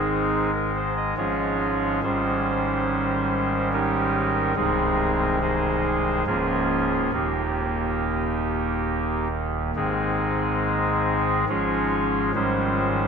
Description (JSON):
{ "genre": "classical, chorale-style piece for pipe organ", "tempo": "70 BPM", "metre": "3/4", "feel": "rubato", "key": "Ab major", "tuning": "A4 = 438 Hz", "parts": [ { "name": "pipe organ, soft reed", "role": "solo", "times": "0.0-13.1 s", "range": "C1 to Eb5", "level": "-21 LUFS", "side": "equal", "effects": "none" } ], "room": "wet huge ambient reverb, RT60 8.0 s", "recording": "in a vast, echoing space", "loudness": "-21 LUFS", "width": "side -6 dB against mid", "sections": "0.0-13.1 A section", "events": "none", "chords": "0.0 Ab; 1.2 Db/Ab; 2.0 Eb7/Ab; 4.6 Ab/C; 6.3 Bbm/Db; 7.1 Eb; 9.8 Ab; 11.5 Db/Ab; 12.3 Eb7/Ab", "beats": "0.32 1.18 | 2.03 2.88 3.73 | 4.57 5.41 6.27 | 7.13 8.01 8.88 | 9.75 10.61 11.49 | 12.34" }